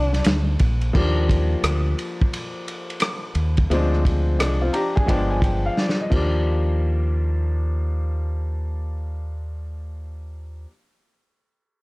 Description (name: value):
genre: hip hop, jazz-hop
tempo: 87 BPM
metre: 4/4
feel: swing 64% on 16ths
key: Eb major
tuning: A4 = 438 Hz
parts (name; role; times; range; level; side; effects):
- breathy alto saxophone; melody; 0.0-0.6 s; D4; -27 LUFS; left 1 dB; none
- bright upright piano; accompaniment; 0.0-10.7 s; F3 to Bb5; -26 LUFS; left 2 dB; none
- deep dub fingered electric bass; bass; 0.0-10.6 s; G1 to Eb2; -22 LUFS; equal; transformer saturation
- vintage drum kit; drums; 0.1-6.3 s; crash cymbal, hi-hat, kick drum, ride cymbal, rim click, snare drum; -23 LUFS; equal; none
room: small room ambience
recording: dry, gritty hardware recording, cassette tape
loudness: -19 LUFS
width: side -24 dB against mid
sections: 0.9-6.5 A section; 6.5-9.2 B section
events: upright piano fill 4.4-6.5; drum fill 5.8-6.5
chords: 0.0 Bb9; 0.9 Ebmaj9; 3.7 Dm7b5; 5.1 G7b9; 6.1 Ebmaj9